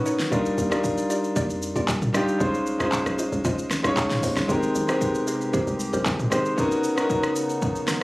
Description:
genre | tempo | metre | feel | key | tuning
amapiano | 115 BPM | 4/4 | straight | Ab major | A4 = 440 Hz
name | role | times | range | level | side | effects
warm grand piano | accompaniment | 0.0-8.0 s | G3 to Db5 | -24 LUFS | left 1 dB | none
mallet-like synth pluck | stabs | 0.0-6.6 s | D#4 to Eb5 | -31 LUFS | equal | chorus, phaser, tape echo
deep house drum kit | drums | 0.1-8.0 s | handclaps, hi-hat, kick drum, rim click, shaker, snare drum, toms | -27 LUFS | equal | none
hollow log drum bass | bass | 0.3-6.6 s | G1 to F2 | -31 LUFS | equal | none
hollow soft pad | sustained chords | 4.5-8.0 s | C3 to G4 | -32 LUFS | right 1 dB | chorus
room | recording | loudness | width
light reverb | recorded on a phone in the room, studio ambience | -21 LUFS | side -20 dB against mid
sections
0.0-8.0 A section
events
none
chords
0.3 Ebmaj9; 2.4 Dbmaj9; 4.5 Abmaj9; 6.6 Bmaj9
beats
| 0.32 0.84 1.36 1.88 | 2.41 2.93 3.45 3.97 | 4.49 5.01 5.54 6.06 | 6.58 7.10 7.62

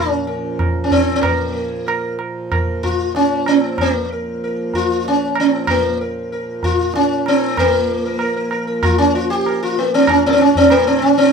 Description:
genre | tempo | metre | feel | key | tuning
indian classical, Hindustani | 95 BPM | 5/4 | straight | unclear | A4 = 440 Hz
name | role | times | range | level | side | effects
sitar | melody | 0.0-11.3 s | Bb3 to Bb4 | -15 LUFS | equal | none
hand-pumped harmonium | drone | 0.0-11.3 s | Bb2 to F3 | -26 LUFS | right 2 dB | none
tabla | percussion | 0.3-10.9 s | none | -22 LUFS | right 2 dB | none
room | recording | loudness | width
moderate studio reverb, RT60 0.5 s | minimal, uncompressed stereo recording | -14 LUFS | side -5 dB against mid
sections
0.0-7.6 A section; 7.6-11.3 B section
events
speeding up 0.0-11.3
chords
none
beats
0.59 | 1.23 1.87 2.51 3.15 3.78 | 4.42 5.05 5.68 6.32 6.95 | 7.58 8.21 8.83 9.46 10.08 | 10.71

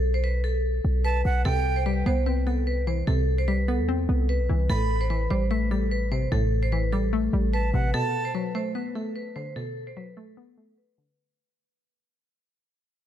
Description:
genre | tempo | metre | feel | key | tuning
hip hop | 148 BPM | 4/4 | half-time | B phrygian | A4 = 440 Hz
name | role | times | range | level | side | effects
vibraphone with medium hard mallets | melody | 0.0-11.2 s | A4 to C5 | -30 LUFS | left 1 dB | low-pass filter, tape echo
warm 808-style bass | bass | 0.0-7.9 s | A1 to E2 | -24 LUFS | equal | none
breathy bright jazz flute | second line | 1.0-1.8, 4.7-5.1, 7.5-8.3 s | F#5 to B5 | -32 LUFS | right 6 dB | tape echo
hollow square pluck | accompaniment | 1.5-11.2 s | A2 to C4 | -29 LUFS | left 2 dB | chorus, low-pass filter
room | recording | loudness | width
small room ambience | dark, warm production | -23 LUFS | side -10 dB against mid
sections
0.0-7.9 A section; 7.9-11.2 B section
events
fade-out 7.9-11.2; filter sweep 7.9-11.2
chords
0.0 B7(no3); 1.5 Cmaj7; 4.7 Am7; 7.9 Bm7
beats
0.24 0.64 1.05 | 1.45 1.86 2.26 2.67 | 3.08 3.48 3.89 4.29 | 4.70 5.10 5.51 5.91 | 6.32 6.72 7.13 7.54 | 7.94 8.35 8.75 9.16 | 9.56 9.97 10.37 10.78

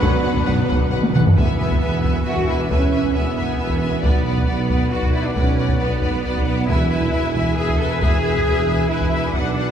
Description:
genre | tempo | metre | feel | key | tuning
cinematic, epic orchestral film score | 135 BPM | 3/4 | straight | E mixolydian | A4 = 440 Hz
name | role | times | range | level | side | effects
clear studio violin section | melody | 0.0-9.7 s | B4 to G#5 | -34 LUFS | left 2 dB | none
rich symphonic violin section | second line | 0.0-9.7 s | B4 to F#5 | -28 LUFS | left 2 dB | none
warm symphonic viola section | accompaniment | 0.0-9.7 s | D4 to B4 | -29 LUFS | equal | none
mellow French horn section | sustained chords | 0.0-9.7 s | B3 to B4 | -28 LUFS | equal | none
rich symphonic string section | sustained chords | 0.0-1.4 s | B3 to F#5 | -34 LUFS | right 1 dB | none
warm trombone section | sustained chords | 0.0-1.1 s | B2 to F#3 | -29 LUFS | left 1 dB | none
mellow trumpet | stabs | 0.0-1.1 s | B4 | -30 LUFS | right 1 dB | none
dark tuba | bass | 0.0-9.7 s | E1 to B1 | -25 LUFS | right 3 dB | none
rich symphonic cello section | bass | 0.0-9.7 s | B3 to B4 | -25 LUFS | right 2 dB | none
rich symphonic double bass section | bass | 0.0-9.7 s | B1 to E2 | -26 LUFS | right 1 dB | none
taiko ensemble | drums | 0.0-9.7 s | none | -21 LUFS | equal | none
timpani | percussion | 0.0-1.3 s | B2 | -26 LUFS | right 1 dB | none
room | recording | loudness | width
wet church reverb, RT60 3.3 s | recorded in a church or concert hall | -16 LUFS | side -8 dB against mid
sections
0.0-1.4 A section; 1.4-9.7 B section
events
timpani fill 0.0-1.4; drum fill 1.0-1.4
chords
0.0 Bm; 1.4 E; 4.0 Bm; 6.7 E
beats
| 0.01 0.47 0.92 | 1.37 1.81 2.26 | 2.70 3.15 3.59 | 4.03 4.48 4.92 | 5.36 5.80 6.24 | 6.68 7.12 7.57 | 8.01 8.45 8.89 | 9.34

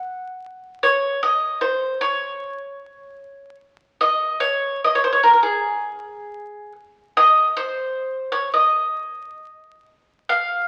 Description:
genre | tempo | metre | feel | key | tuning
fado | 77 BPM | 2/4 | rubato | unclear | A4 = 440 Hz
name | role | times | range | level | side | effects
bowl-back mandolin | solo | 0.0-10.7 s | Ab4 to F#5 | -20 LUFS | equal | none
room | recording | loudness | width
wet large studio reverb, RT60 1.4 s | very old 78 rpm record, vinyl crackle | -20 LUFS | mono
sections
0.0-4.0 A section; 4.0-10.7 B section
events
none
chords
none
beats
0.07 | 0.84 1.61 | 2.39 3.19 | 3.99 4.79 | 5.58 6.35 | 7.13 7.89 | 8.66 9.46 | 10.26

